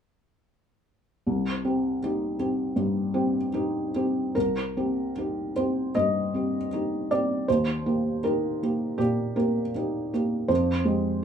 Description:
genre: neoclassical minimalist piano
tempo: 78 BPM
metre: 4/4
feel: uneven beats, rubato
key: C minor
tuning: A4 = 440 Hz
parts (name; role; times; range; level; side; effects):
- felt-muted upright piano; solo; 1.3-11.2 s; C2 to Eb5; -24 LUFS; equal; none
room: light reverb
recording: band playing live in one room, small room ambience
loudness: -24 LUFS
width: side -8 dB against mid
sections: 1.3-4.3 A section; 4.3-11.2 B section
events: none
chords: 1.3 Cm; 7.5 Eb6; 10.5 Fmadd9

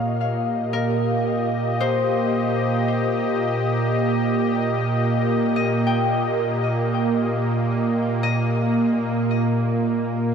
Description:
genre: ambient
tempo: 56 BPM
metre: 3/4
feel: straight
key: unclear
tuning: A4 = 440 Hz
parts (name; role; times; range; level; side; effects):
- warm analog pad; sustained chords; 0.0-10.3 s; Bb2 to Eb5; -21 LUFS; equal; chorus
- concert harp; arpeggios; 0.0-10.0 s; Bb4 to G5; -29 LUFS; left 3 dB; ping-pong delay
- overtone-sweeping drone; drone; 0.0-10.3 s; Bb3; -28 LUFS; right 3 dB; chorus, built-in reverb
room: wet huge ambient reverb, RT60 7.5 s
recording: none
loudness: -19 LUFS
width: side -7 dB against mid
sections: 0.0-10.3 A section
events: none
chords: 0.0 Eb/Bb

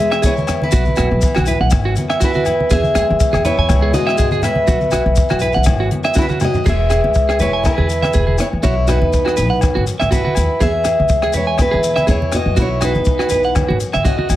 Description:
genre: highlife guitar band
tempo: 122 BPM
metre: 4/4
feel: swing 55% on 16ths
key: E major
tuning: A4 = 439 Hz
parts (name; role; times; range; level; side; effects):
- picked steel-string acoustic guitar; melody; 0.0-14.4 s; D#4 to E5; -18 LUFS; equal; slapback echo
- nylon-string guitar; accompaniment; 0.0-14.4 s; E2 to G#4; -26 LUFS; left 4 dB; none
- electric guitar at the edge of break-up; arpeggios; 0.1-14.3 s; F#4 to G#5; -21 LUFS; right 5 dB; warbly pitch drift, slapback echo
- compact cocktail drum kit; drums; 0.1-14.4 s; crash cymbal, hi-hat, kick drum, rim click, snare drum, toms; -18 LUFS; equal; none
- agogo bells; percussion; 0.1-14.4 s; none; -28 LUFS; left 7 dB; none
- maracas; percussion; 0.2-14.4 s; none; -31 LUFS; left 7 dB; none
- congas; percussion; 0.4-14.4 s; none; -24 LUFS; right 1 dB; none
- upright bass; bass; 0.7-14.4 s; E1 to E3; -19 LUFS; equal; none
room: moderate spring reverb, RT60 1.9 s, small room ambience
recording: none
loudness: -13 LUFS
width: side -14 dB against mid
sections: 0.0-6.7 A section; 6.7-14.4 B section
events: drum fill 6.2-6.7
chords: 0.0 E; 0.7 Bsus4; 2.7 E; 4.7 Bsus4; 6.7 E; 8.6 Bsus4; 10.6 E; 12.6 Bsus4

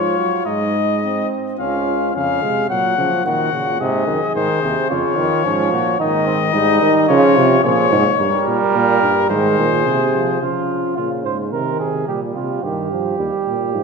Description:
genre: classical, imitative canzona for brass ensemble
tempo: 108 BPM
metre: 4/4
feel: straight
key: Db major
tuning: A4 = 442 Hz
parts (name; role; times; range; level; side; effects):
- clear cornet; melody; 0.0-10.4 s; Bb4 to Gb5; -19 LUFS; left 8 dB; none
- mellow flugelhorn; second line; 0.0-13.8 s; C4 to C5; -22 LUFS; right 4 dB; none
- clear trombone; accompaniment; 0.0-13.8 s; C3 to Db4; -22 LUFS; right 2 dB; none
- clear tuba; bass; 0.0-13.8 s; Db2 to Eb3; -20 LUFS; right 2 dB; none
room: wet concert hall reverb, RT60 2.2 s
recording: minimal, uncompressed stereo recording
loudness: -15 LUFS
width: side -4 dB against mid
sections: 0.0-1.6 A section; 1.6-10.4 B section; 10.4-13.8 A section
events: none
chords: 0.5 Ab; 1.6 Db; 2.7 Gb/Bb; 3.8 Ab; 4.9 Db/F; 6.0 Ab5; 7.1 Db; 8.2 Gm; 9.3 Ab; 10.4 Db; 11.5 Ab/C; 12.6 Eb/G

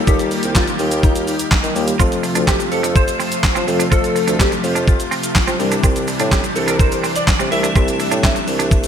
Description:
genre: dance-pop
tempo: 125 BPM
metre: 4/4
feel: straight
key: F major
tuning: A4 = 443 Hz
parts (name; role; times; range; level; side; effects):
- shimmering bell with halo; melody; 0.0-8.9 s; Eb4 to E5; -22 LUFS; left 1 dB; ensemble chorus, phaser, digital delay
- tine electric piano; accompaniment; 0.0-8.6 s; F3 to A4; -23 LUFS; left 2 dB; medium stereo tremolo, sidechain pumping
- soft supersaw; sustained chords; 0.0-8.9 s; C3 to G4; -25 LUFS; right 1 dB; sidechain pumping
- mellow bassoon; bass; 0.1-8.9 s; C2 to F3; -21 LUFS; equal; sidechain pumping
- detuned 8-bit digital drum machine; drums; 0.1-8.9 s; handclaps, hi-hat, kick drum, shaker, snare drum; -17 LUFS; equal; gated reverb
- semi-hollow electric guitar; riff; 2.0-8.7 s; C4 to F4; -25 LUFS; right 7 dB; lush chorus
room: light reverb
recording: bright 1980s-style digital production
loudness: -14 LUFS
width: side -8 dB against mid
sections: 0.0-8.9 A section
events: none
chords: 0.0 Ebadd9; 2.0 F; 5.6 Cadd9

